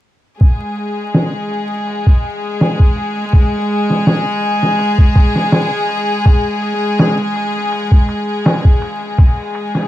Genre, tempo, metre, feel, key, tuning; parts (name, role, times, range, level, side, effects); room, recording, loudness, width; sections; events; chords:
trip hop; 82 BPM; 4/4; swing 53% on 16ths; A4 = 438 Hz
dark chamber string section; sustained chords; 0.4-9.9 s; Ab3 to Ab4; -17 LUFS; left 1 dB
trip hop sampler-style drum kit; drums; 0.4-9.9 s; kick drum, ride cymbal, snare drum; -11 LUFS; equal; low-pass filter on kick, vintage 12-bit sampler grit, low-pass filter on cymbals, low-pass filter on snare
digital ambience; vinyl crackle; -12 LUFS; side -14 dB against mid
0.4-9.9 A section